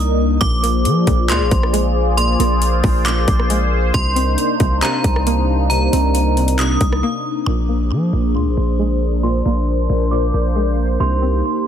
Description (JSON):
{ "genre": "hip hop, atmospheric cloud-rap", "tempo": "136 BPM", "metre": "4/4", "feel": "half-time", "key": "unclear", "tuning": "A4 = 440 Hz", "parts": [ { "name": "sweeping resonant pad", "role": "sustained chords", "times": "0.0-11.7 s", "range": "C3 to D5", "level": "-20 LUFS", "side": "left 1 dB", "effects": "chorus, sidechain pumping, low-pass filter" }, { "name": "long sustained 808-style bass", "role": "bass", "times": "0.0-11.4 s", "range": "Bb1 to F3", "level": "-18 LUFS", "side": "equal", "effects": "none" }, { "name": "metallic FM bell", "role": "melody", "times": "0.4-11.7 s", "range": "Bb5 to Eb6", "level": "-23 LUFS", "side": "right 1 dB", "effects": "chorus, low-pass filter, digital delay" }, { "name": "string-like resonator pluck", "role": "arpeggios", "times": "0.4-11.7 s", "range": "Bb2 to C4", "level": "-26 LUFS", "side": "right 2 dB", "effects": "chorus, low-pass filter, digital delay" }, { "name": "trap drum kit", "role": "drums", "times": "0.4-7.0 s", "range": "handclaps, hi-hat, kick drum, rim click", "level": "-20 LUFS", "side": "equal", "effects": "overdrive" } ], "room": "little or no reverb", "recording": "dense, heavily limited modern master", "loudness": "-14 LUFS", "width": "side -9 dB against mid", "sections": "0.0-7.5 A section; 7.5-11.7 B section", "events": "break 7.0-7.5; filter sweep 7.5-11.7", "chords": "0.4 Bb9; 3.9 Cm7; 7.5 Bb9; 11.0 Cm7", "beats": "| 0.41 0.85 1.29 1.74 | 2.18 2.62 3.06 3.50 | 3.94 4.38 4.82 5.26 | 5.71 6.15 6.59 7.03 | 7.47 7.91 8.35 8.79 | 9.23 9.68 10.12 10.56 | 11.00 11.44" }